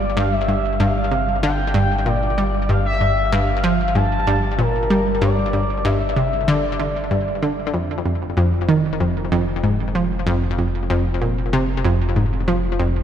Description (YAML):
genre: ambient, sequencer-driven space music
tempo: 95 BPM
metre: 4/4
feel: straight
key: G dorian, F minor from 7.7 s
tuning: A4 = 440 Hz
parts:
  - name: expressive portamento lead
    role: melody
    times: 0.0-7.4 s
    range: Bb4 to A5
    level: -23 LUFS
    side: left 1 dB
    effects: wide subtle chorus, ping-pong delay
  - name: warm sub bass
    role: bass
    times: 0.0-13.0 s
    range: F1 to G1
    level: -25 LUFS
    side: equal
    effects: none
  - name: analog pluck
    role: riff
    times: 0.2-12.9 s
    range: F2 to G3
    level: -19 LUFS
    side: equal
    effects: chorus, ping-pong delay
room: wet cathedral reverb, RT60 5.0 s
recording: in a vast, echoing space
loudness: -17 LUFS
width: side -9 dB against mid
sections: 0.0-7.7 A section; 7.7-13.0 B section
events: none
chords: 0.0 G5; 7.7 N.C.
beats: | 0.17 0.80 1.43 2.06 | 2.69 3.32 3.95 4.59 | 5.22 5.85 6.48 7.11 | 7.74 8.38 9.01 9.64 | 10.27 10.90 11.53 12.16 | 12.80